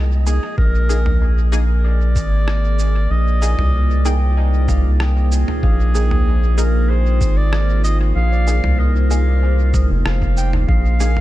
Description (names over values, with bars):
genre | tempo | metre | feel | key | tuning
ambient dub | 95 BPM | 4/4 | straight | Bb mixolydian | A4 = 440 Hz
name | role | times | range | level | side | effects
deep dark ambient pad | sustained chords | 0.0-11.2 s | Bb3 to Eb5 | -26 LUFS | right 1 dB | chorus, built-in reverb
concert harp | arpeggios | 0.0-8.0 s | Eb4 to G5 | -35 LUFS | right 1 dB | dub echo
round analog bass | bass | 0.0-11.2 s | F1 to C2 | -15 LUFS | equal | none
wind-like tuned noise texture | texture | 0.0-0.6 s | Eb5 | -40 LUFS | right 2 dB | built-in reverb
warm clarinet | melody | 0.3-11.2 s | Ab4 to G5 | -26 LUFS | equal | dub echo
filtered dub chord stab | stabs | 0.3-11.1 s | Bb3 to Ab4 | -31 LUFS | left 2 dB | analog chorus, dub echo
lo-fi sampler-style drum kit | drums | 0.3-11.2 s | cabasa, rim click, toms | -27 LUFS | right 1 dB | studio ambience, dub echo
electronic kick drum | drums | 0.6-10.8 s | none | -19 LUFS | equal | studio ambience
room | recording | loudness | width
little or no reverb | faint mains hum | -14 LUFS | side -15 dB against mid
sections
0.6-11.2 A section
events
none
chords
0.0 Bb7sus4